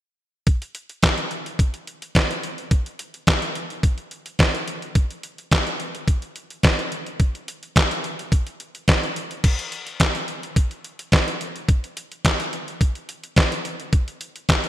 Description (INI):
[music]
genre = funk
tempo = 107 BPM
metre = 4/4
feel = straight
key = none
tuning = none
[part]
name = detuned 8-bit digital drum machine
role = drums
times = 0.5-14.7 s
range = crash cymbal, handclaps, hi-hat, kick drum, snare drum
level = -19 LUFS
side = equal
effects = gated reverb
[sound]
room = moderate lush hall reverb, RT60 1.7 s, digital ambience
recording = bright 1980s-style digital production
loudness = -20 LUFS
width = side -13 dB against mid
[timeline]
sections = 0.5-9.4 A section; 9.4-14.7 B section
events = none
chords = none